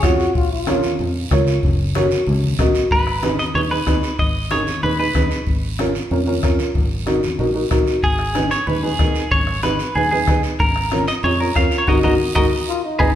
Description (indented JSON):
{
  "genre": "latin, cumbia",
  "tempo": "187 BPM",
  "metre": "4/4",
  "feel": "straight",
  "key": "G# dorian",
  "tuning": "A4 = 440 Hz",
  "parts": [
    { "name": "clean electric guitar", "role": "melody", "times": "0.0-0.1, 2.9-5.3, 8.0-13.1 s", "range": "D#4 to E#5", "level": "-20 LUFS", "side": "right 1 dB", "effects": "spring reverb" },
    { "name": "mellow trombone", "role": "second line", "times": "0.0-1.1, 12.7-13.1 s", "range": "D#4 to F#4", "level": "-23 LUFS", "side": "left 5 dB", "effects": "none" },
    { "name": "dark upright piano", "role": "accompaniment", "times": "0.0-13.1 s", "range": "C#4 to D#5", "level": "-21 LUFS", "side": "right 1 dB", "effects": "none" },
    { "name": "fingered electric bass", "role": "bass", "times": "0.0-13.1 s", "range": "F#1 to E#2", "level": "-23 LUFS", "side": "equal", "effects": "none" },
    { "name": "bombo", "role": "percussion", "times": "0.0-13.1 s", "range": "none", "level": "-21 LUFS", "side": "left 1 dB", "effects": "none" },
    { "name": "congas", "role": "percussion", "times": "0.0-13.1 s", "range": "none", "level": "-26 LUFS", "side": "left 1 dB", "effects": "none" },
    { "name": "guiro", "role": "percussion", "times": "0.0-13.1 s", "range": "none", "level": "-32 LUFS", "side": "right 5 dB", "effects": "none" }
  ],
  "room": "wet stone room reverb, RT60 1.3 s",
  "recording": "band playing live in one room",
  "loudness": "-16 LUFS",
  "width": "side -11 dB against mid",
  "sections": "0.0-2.9 A section; 2.9-13.2 B section",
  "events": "band accent 11.9-13.2",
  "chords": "0.4 A#m; 1.6 F#; 2.9 G#m; 5.5 A#m/G#; 6.8 D#m/G#; 8.0 G#m; 10.6 A#m/G#; 11.9 D#m/G#; 12.5 G#m",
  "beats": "0.03 | 0.35 0.67 0.99 1.31 | 1.63 1.95 2.27 2.59 | 2.91 3.23 3.55 3.87 | 4.19 4.51 4.83 5.15 | 5.47 5.79 6.11 6.43 | 6.75 7.07 7.39 7.71 | 8.04 8.36 8.68 8.99 | 9.32 9.64 9.96 10.28 | 10.60 10.92 11.24 11.56 | 11.88 12.20 12.52 12.84"
}